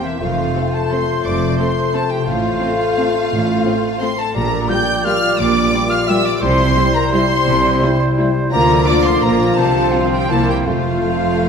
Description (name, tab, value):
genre	classical, orchestral ballroom waltz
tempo	150-188 BPM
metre	3/4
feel	rubato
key	F major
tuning	A4 = 440 Hz
part	rich symphonic violin section	melody	0.0-11.5 s	E5 to G6	-23 LUFS	left 2 dB	none
part	hollow concert flute	second line	0.0-11.5 s	E5 to G6	-23 LUFS	left 1 dB	none
part	mellow clarinet	second line	0.0-11.5 s	C4 to F4	-24 LUFS	left 3 dB	none
part	rich studio violin section	second line	0.0-11.5 s	E4 to G5	-25 LUFS	left 3 dB	none
part	warm oboe	second line	0.0-11.5 s	C5 to D5	-26 LUFS	right 2 dB	none
part	mellow bassoon	accompaniment	0.0-11.5 s	F3 to Bb3	-24 LUFS	right 1 dB	none
part	concert harp	arpeggios	0.0-11.5 s	E2 to C6	-22 LUFS	left 7 dB	none
part	clear symphonic double bass section	bass	0.2-11.5 s	F1 to D2	-24 LUFS	right 4 dB	none
part	rich symphonic cello section	bass	0.2-11.5 s	F2 to D3	-23 LUFS	right 4 dB	none
part	clear symphonic viola section	accompaniment	0.5-11.5 s	G3 to A4	-24 LUFS	right 3 dB	none
part	mellow French horn section	sustained chords	0.6-11.5 s	G3 to F4	-26 LUFS	left 4 dB	none
room	moderate scoring stage reverb, RT60 1.6 s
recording	none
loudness	-14 LUFS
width	side -6 dB against mid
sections	0.0-11.5 A section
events	none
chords	0.2 F; 2.3 F/A; 4.3 Gm7/Bb; 6.4 C; 8.5 Bb/D; 9.6 F/C; 10.3 C7; 10.7 F